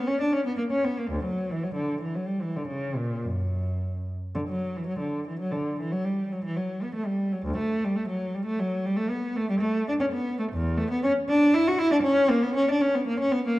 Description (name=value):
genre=classical, baroque-style suite movement for unaccompanied cello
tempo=117 BPM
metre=3/4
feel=rubato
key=unclear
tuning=A4 = 440 Hz
part: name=rich cello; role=solo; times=0.0-13.6 s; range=D2 to F#4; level=-24 LUFS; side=equal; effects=none
room=wet recital hall reverb, RT60 1.4 s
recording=dark, warm production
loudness=-24 LUFS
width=side -17 dB against mid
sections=0.0-4.3 A section; 4.3-13.6 A section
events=none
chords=none